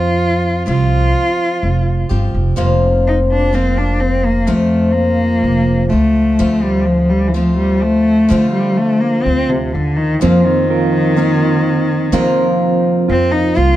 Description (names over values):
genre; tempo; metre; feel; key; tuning
acoustic folk duo or small band; 63 BPM; 4/4; straight; F mixolydian; A4 = 440 Hz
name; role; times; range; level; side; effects
rich cello; melody; 0.0-13.8 s; C3 to F4; -15 LUFS; left 1 dB; none
picked steel-string acoustic guitar; accompaniment; 0.0-13.8 s; F2 to G4; -18 LUFS; left 1 dB; none
upright bass; bass; 0.0-13.8 s; F1 to F3; -17 LUFS; right 1 dB; none
mellow electric guitar; arpeggios; 10.2-13.8 s; C4 to Bb4; -19 LUFS; right 9 dB; tremolo
room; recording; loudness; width
light reverb; dark, warm production; -12 LUFS; side -14 dB against mid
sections
0.0-2.6 A section; 2.6-13.8 B section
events
cello solo 2.6-13.8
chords
0.0 Fsus2; 2.6 Fsus4; 6.4 Dm7; 10.2 Fsus4